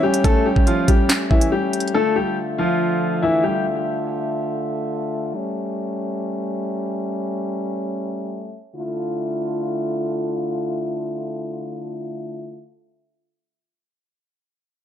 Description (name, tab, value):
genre	hip hop, drill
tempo	free time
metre	none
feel	none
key	D harmonic minor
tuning	A4 = 438 Hz
part	clear concert grand piano	melody	0.0-3.6 s	E3 to A4	-20 LUFS	left 2 dB	low-pass filter, ping-pong delay
part	mellow French horn section	sustained chords	0.0-12.7 s	D3 to E5	-24 LUFS	equal	low-pass filter
part	drill drum kit	drums	0.1-1.9 s	handclaps, hi-hat, kick drum, snare drum	-17 LUFS	equal	none
room	light reverb, small room ambience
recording	none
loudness	-20 LUFS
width	side -10 dB against mid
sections	0.0-8.8 A section; 8.8-12.2 B section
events	filter sweep 0.0-8.8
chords	0.0 A7; 1.9 Dmadd9; 5.3 A7; 8.8 Dmadd9